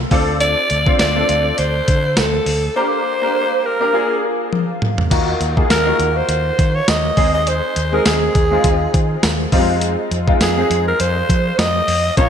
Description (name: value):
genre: 1980s-style pop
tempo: 102 BPM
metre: 4/4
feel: swing 55% on 16ths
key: unclear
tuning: A4 = 440 Hz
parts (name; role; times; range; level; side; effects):
- clear concert grand piano; accompaniment; 0.0-12.3 s; F3 to C5; -20 LUFS; left 1 dB; ensemble chorus
- vintage muted fingered electric bass; bass; 0.0-12.3 s; Bb1 to F3; -21 LUFS; equal; none
- clean 12-bit digital drum machine; drums; 0.1-12.3 s; crash cymbal, hi-hat, kick drum, snare drum, tambourine, toms; -18 LUFS; equal; none
- breathy alto saxophone; melody; 0.4-12.3 s; Ab4 to Eb5; -18 LUFS; right 1 dB; ping-pong delay
room: moderate lush hall reverb, RT60 1.7 s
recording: bright 1980s-style digital production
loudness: -14 LUFS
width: side -8 dB against mid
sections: 0.0-5.1 A section; 5.1-12.3 A section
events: drum fill 4.5-5.1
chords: 0.1 Dm7; 2.8 Gm; 3.9 Bb7; 5.1 Ebmadd9; 7.2 Ab/Eb; 9.5 Fm7